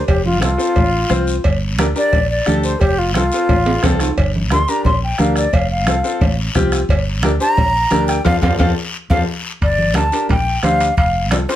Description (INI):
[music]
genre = latin, cumbia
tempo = 176 BPM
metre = 4/4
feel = straight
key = G minor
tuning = A4 = 440 Hz
[part]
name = mellow concert flute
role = melody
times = 0.0-11.6 s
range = F4 to C6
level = -18 LUFS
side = left 1 dB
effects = none
[part]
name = fingered electric bass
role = bass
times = 0.1-11.4 s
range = F1 to F2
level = -19 LUFS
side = equal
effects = none
[part]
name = bombo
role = percussion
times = 0.1-11.5 s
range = none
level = -20 LUFS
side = equal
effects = none
[part]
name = congas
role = percussion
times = 0.1-11.5 s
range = none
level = -23 LUFS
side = equal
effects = none
[part]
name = cowbell and timbales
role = percussion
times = 0.1-11.6 s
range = none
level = -24 LUFS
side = right 4 dB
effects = none
[part]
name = guiro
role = percussion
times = 0.1-11.6 s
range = none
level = -29 LUFS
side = left 4 dB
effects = none
[part]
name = bright upright piano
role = accompaniment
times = 0.4-11.6 s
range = C4 to C5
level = -21 LUFS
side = left 1 dB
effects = none
[sound]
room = light reverb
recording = none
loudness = -14 LUFS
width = side -12 dB against mid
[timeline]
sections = 0.0-9.6 A section; 9.6-11.6 B section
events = flute solo 0.0-9.6; drum fill 3.7-4.2, 8.6-9.6; band accent 8.3-9.6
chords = 0.1 F; 1.4 Gm; 2.8 F; 4.2 Gm; 5.5 F; 6.9 Gm; 8.3 F; 9.6 Gm; 11.0 F